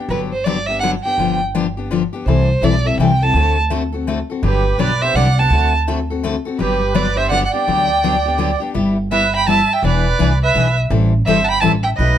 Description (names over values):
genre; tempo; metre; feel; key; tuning
acoustic string swing (jazz manouche); 166 BPM; 3/4; swing 62% on 8ths; G major; A4 = 440 Hz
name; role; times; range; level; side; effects
picked steel-string acoustic guitar; accompaniment; 0.0-12.2 s; B2 to A4; -20 LUFS; left 6 dB; none
warm violin; melody; 0.1-12.2 s; B4 to B5; -18 LUFS; right 2 dB; plate reverb
upright bass; bass; 0.1-12.2 s; E1 to D2; -18 LUFS; right 1 dB; none
accordion; second line; 4.4-12.2 s; G4 to G5; -23 LUFS; right 9 dB; light tremolo tuning
room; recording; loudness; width
light reverb; close, detailed microphones; -14 LUFS; side -10 dB against mid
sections
0.1-8.8 A section; 8.8-12.2 B section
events
none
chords
0.1 Gmaj7; 1.2 G7; 2.3 C6; 3.3 D7; 4.4 Gmaj7; 5.5 D7; 6.6 Gmaj7; 8.8 G6; 9.8 E7; 10.9 Am7